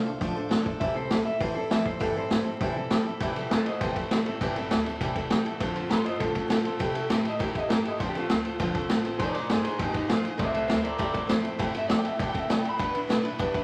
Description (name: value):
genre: rockabilly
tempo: 200 BPM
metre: 4/4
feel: straight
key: C major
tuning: A4 = 440 Hz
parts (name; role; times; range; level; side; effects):
- electric guitar through a small old amp; melody; 0.0-13.0 s; Eb4 to B5; -34 LUFS; equal; none
- picked steel-string acoustic guitar; accompaniment; 0.0-13.6 s; C3 to C5; -34 LUFS; equal; none
- upright bass; bass; 0.0-13.6 s; F1 to D3; -43 LUFS; equal; none
- vintage drum kit; drums; 0.2-13.6 s; hi-hat, kick drum, ride cymbal, snare drum; -30 LUFS; equal; none
room: moderate large studio reverb, RT60 0.9 s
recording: vinyl crackle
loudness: -27 LUFS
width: mono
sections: 0.0-3.2 A section; 3.2-13.6 B section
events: clean electric guitar solo 0.0-3.2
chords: 0.0 F6; 0.8 C6; 5.6 F6; 6.8 C6; 8.0 F6; 9.2 Fm7; 10.4 C6; 12.8 G6